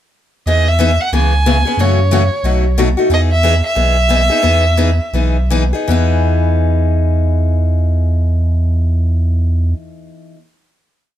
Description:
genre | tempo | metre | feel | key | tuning
acoustic string swing (jazz manouche) | 155-183 BPM | 4/4 | swing 59% on 8ths | E major | A4 = 444 Hz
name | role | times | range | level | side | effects
dark violin | melody | 0.5-5.5 s | C#5 to G#5 | -16 LUFS | right 1 dB | plate reverb
picked steel-string acoustic guitar | accompaniment | 0.5-10.4 s | B2 to G#4 | -18 LUFS | left 4 dB | none
warm sub bass | bass | 0.5-9.7 s | B1 to F#2 | -13 LUFS | equal | none
room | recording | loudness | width
little or no reverb | close, detailed microphones | -12 LUFS | side -11 dB against mid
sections
0.5-5.9 A section; 5.9-9.0 final chord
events
slowing down 3.1-5.9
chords
0.5 Emaj7; 1.1 C#m7; 1.8 F#m7; 2.4 B7; 3.1 Emaj7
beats
| 0.46 0.79 1.12 1.45 | 1.77 2.10 2.43 2.76 | 3.09 3.42 3.75 4.09 | 4.43 4.78 5.14 5.50 | 5.88 6.27 6.66 7.04 | 7.43 7.82 8.21 8.59

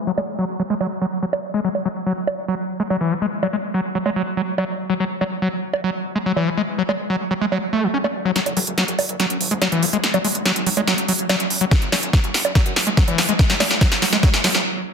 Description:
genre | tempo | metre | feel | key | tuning
psychedelic trance | 143 BPM | 4/4 | straight | F# minor | A4 = 443 Hz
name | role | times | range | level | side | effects
screaming distorted acid line | riff | 0.1-14.5 s | E3 to C#4 | -21 LUFS | moving between left 5 dB and right 3 dB | distortion, chorus, auto-pan, sidechain pumping, dub echo
big-room dance drum kit | drums | 0.2-14.6 s | bongos, hi-hat, snare drum | -21 LUFS | right 2 dB | high-pass filter on perc, high-pass filter on snare, high-pass filter on hats, high-pass filter on room
fat analog bass | bass | 8.5-14.6 s | F#1 to F#2 | -34 LUFS | equal | high-pass filter
electronic kick drum | drums | 11.7-14.3 s | none | -16 LUFS | equal | none
room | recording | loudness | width
wet digital room reverb, RT60 1.2 s | dense, heavily limited modern master, low-pass filter | -18 LUFS | side -6 dB against mid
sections
0.0-8.4 A section; 8.4-14.9 B section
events
filter sweep on acid bass 0.0-8.4; filter sweep 0.0-8.4; build-up 8.4-14.9; drum fill 8.4-14.7; stop 14.7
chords
0.0 F#5; 8.4 F#sus2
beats
0.39 0.81 1.23 | 1.64 2.06 2.48 2.90 | 3.32 3.74 4.16 4.58 | 5.00 5.42 5.84 6.26 | 6.68 7.10 7.52 7.94 | 8.36 8.78 9.20 9.62 | 10.04 10.46 10.88 11.29 | 11.71 12.13 12.55 12.97 | 13.39 13.81 14.23

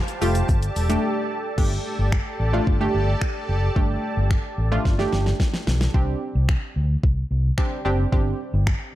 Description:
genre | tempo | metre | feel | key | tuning
dance-pop | 110 BPM | 4/4 | straight | unclear | A4 = 440 Hz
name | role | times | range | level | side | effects
punchy chord stab | accompaniment | 0.0-8.9 s | A3 to G4 | -26 LUFS | right 1 dB | chorus, sidechain pumping
filtered supersaw swell | sustained chords | 0.0-5.9 s | G4 to A5 | -30 LUFS | right 1 dB | sidechain pumping
smooth R&B drum kit | drums | 0.1-8.8 s | crash cymbal, finger snaps, hi-hat, kick drum, shaker, snare drum | -22 LUFS | equal | none
vintage muted fingered electric bass | bass | 0.2-8.7 s | E1 to D2 | -22 LUFS | equal | sidechain pumping
room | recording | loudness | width
digital ambience | dark, warm production | -20 LUFS | side -14 dB against mid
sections
0.0-1.6 A section; 1.6-5.9 B section; 5.9-8.9 C section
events
break 1.0-1.6; drum fill 4.9-5.9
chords
0.5 Gsus2; 5.9 Csus2; 8.1 Gsus4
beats
0.49 1.03 | 1.58 2.12 2.67 3.22 | 3.76 4.31 4.85 5.40 | 5.94 6.49 7.04 7.58 | 8.12 8.67

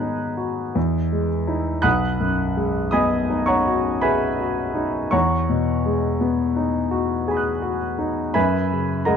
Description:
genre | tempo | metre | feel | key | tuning
classical, impressionist solo piano | 55 BPM | 3/4 | rubato | B major | A4 = 440 Hz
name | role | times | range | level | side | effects
clear grand piano | solo | 0.0-9.2 s | B1 to F#6 | -19 LUFS | equal | none
room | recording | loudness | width
light reverb | dark, warm production | -19 LUFS | side -7 dB against mid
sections
0.0-9.2 A section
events
none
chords
0.0 G#m9; 0.8 Emaj7#11; 1.9 B6; 5.1 Emaj9; 8.4 F#11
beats
0.76 | 1.85 2.96 4.07 | 5.14 6.22 7.28 | 8.35

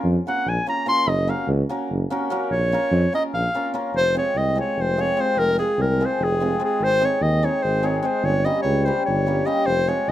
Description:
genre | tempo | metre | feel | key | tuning
balkan folk, Balkan wedding band | 294 BPM (eighths) | 7/8 | straight | Bb minor, F minor from 3.9 s | A4 = 441 Hz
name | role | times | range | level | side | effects
warm tuba | bass | 0.0-10.1 s | F1 to F2 | -23 LUFS | right 1 dB | none
clear clarinet | melody | 0.3-10.1 s | Ab4 to C6 | -21 LUFS | equal | none
hammered dulcimer | accompaniment | 0.3-10.1 s | G3 to Bb4 | -25 LUFS | left 2 dB | none
room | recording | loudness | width
light reverb | close, detailed microphones | -19 LUFS | side -12 dB against mid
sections
0.0-3.9 A section; 3.9-10.1 B section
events
clarinet solo 0.0-3.9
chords
0.0 Bbm; 1.1 Gb; 2.5 Bbm; 3.9 Fm; 6.8 Ab; 8.2 Gdim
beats
0.05 0.25 0.46 0.67 0.87 | 1.07 1.28 1.49 1.69 1.90 2.10 2.30 | 2.51 2.71 2.92 3.12 3.33 3.53 3.73 | 3.94 4.14 4.35 4.55 4.76 4.96 5.17 | 5.37 5.58 5.78 5.98 6.19 6.39 6.60 | 6.80 7.00 7.21 7.41 7.62 7.82 8.03 | 8.23 8.44 8.64 8.85 9.05 9.25 9.46 | 9.66 9.87 10.07

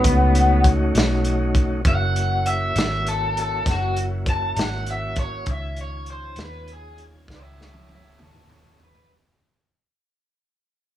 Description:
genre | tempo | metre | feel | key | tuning
slow blues | 66 BPM (dotted quarters) | 12/8 | straight | unclear | A4 = 442 Hz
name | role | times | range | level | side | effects
raw garage guitar | melody | 0.0-9.1 s | B3 to A5 | -24 LUFS | left 1 dB | overdrive, slapback echo
tonewheel organ | sustained chords | 0.0-9.1 s | D#3 to G#5 | -28 LUFS | equal | slow rotary speaker
vintage muted fingered electric bass | bass | 0.0-9.1 s | F#1 to D#2 | -23 LUFS | equal | none
crunchy breakbeat drum kit | drums | 0.0-9.1 s | hi-hat, kick drum, snare drum, toms | -22 LUFS | equal | none
room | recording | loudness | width
light reverb | none | -19 LUFS | side -12 dB against mid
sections
0.0-9.1 A section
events
fade-out 0.0-9.1; overdriven electric guitar solo 0.0-9.1; drum fill 7.3-9.1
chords
0.0 B9; 1.9 F#9; 5.5 C#add9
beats
0.05 0.95 | 1.86 2.77 3.67 4.58 | 5.49 6.39 7.30 8.20

